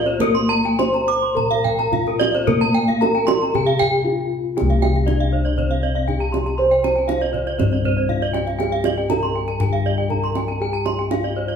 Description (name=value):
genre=Balinese gamelan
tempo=101-119 BPM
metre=4/4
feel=straight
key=C slendro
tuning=A4 = 442 Hz
part: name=gamelan-type bronze metallophone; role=melody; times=0.0-11.6 s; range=Bb3-45c to C5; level=-23 LUFS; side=left 2 dB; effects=none
part: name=gamelan-type bronze metallophone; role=arpeggios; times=0.0-11.6 s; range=C5 to D6+30c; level=-24 LUFS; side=right 4 dB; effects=none
part: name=gamelan-type bossed gongs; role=bass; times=0.0-11.6 s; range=C2 to C5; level=-22 LUFS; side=left 1 dB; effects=none
part: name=gamelan-type bronze metallophone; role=arpeggios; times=0.1-11.5 s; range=Bb4-45c to C6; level=-25 LUFS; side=left 2 dB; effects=none
part: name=kendang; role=percussion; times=0.1-11.6 s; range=none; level=-26 LUFS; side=right 6 dB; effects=none
room=wet large studio reverb, RT60 1.3 s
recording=band playing live in one room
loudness=-17 LUFS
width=side -7 dB against mid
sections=0.0-4.6 A section; 4.6-11.6 B section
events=break 3.8-4.6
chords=none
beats=| 0.20 0.79 1.36 1.93 | 2.48 3.02 3.55 4.06 | 4.57 5.08 5.58 6.08 | 6.59 7.09 7.59 8.10 | 8.60 9.10 9.61 10.11 | 10.61 11.12